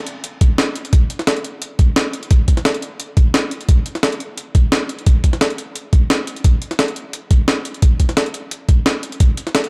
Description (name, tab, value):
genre	drum and bass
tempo	174 BPM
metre	4/4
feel	swing 54% on 16ths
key	none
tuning	none
part	breakbeat sampler-style drum kit	drums	0.1-9.7 s	hi-hat, snare drum	-21 LUFS	equal	none
part	electronic kick drum	drums	0.4-9.3 s	none	-14 LUFS	equal	none
room	little or no reverb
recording	dark, warm production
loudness	-17 LUFS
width	mono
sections	0.0-9.7 A section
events	none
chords	none